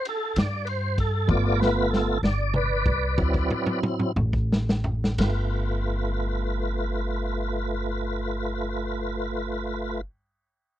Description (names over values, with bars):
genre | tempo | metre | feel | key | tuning
slow blues | 58-66 BPM (dotted quarters) | 12/8 | straight | G mixolydian | A4 = 440 Hz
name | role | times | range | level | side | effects
tonewheel organ | sustained chords | 0.0-10.0 s | F#3 to D5 | -27 LUFS | equal | slow rotary speaker, overdrive, chorus vibrato
vintage drum kit | drums | 0.1-5.4 s | kick drum, ride cymbal, snare drum, toms | -26 LUFS | equal | none
upright bass | bass | 0.4-10.0 s | G1 to G2 | -27 LUFS | equal | none
room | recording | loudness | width
little or no reverb | dry, close 1970s-style studio recording | -23 LUFS | side -12 dB against mid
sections
0.0-5.2 A section; 5.2-9.3 B section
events
tonewheel organ solo 0.0-5.2; slowing down 0.1-5.2; drum fill 1.3-5.2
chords
0.0 Csus2; 1.3 G9; 3.2 D9; 5.2 G9